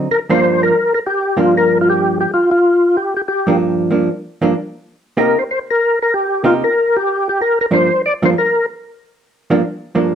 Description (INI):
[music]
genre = jazz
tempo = 189 BPM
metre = 4/4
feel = swing 62% on 8ths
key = G minor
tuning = A4 = 440 Hz
[part]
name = vintage hollow-body jazz guitar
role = accompaniment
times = 0.0-10.1 s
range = G2 to G4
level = -15 LUFS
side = right 2 dB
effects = none
[part]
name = percussive tonewheel organ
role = melody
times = 0.1-8.7 s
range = F4 to D5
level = -14 LUFS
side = left 1 dB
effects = slow rotary speaker, overdrive, chorus vibrato
[sound]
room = wet studio reverb, RT60 0.8 s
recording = dark, warm production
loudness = -13 LUFS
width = side -8 dB against mid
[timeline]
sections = 0.1-10.2 A section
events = none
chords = 0.1 Gm7; 5.2 Cm7; 7.7 Gm7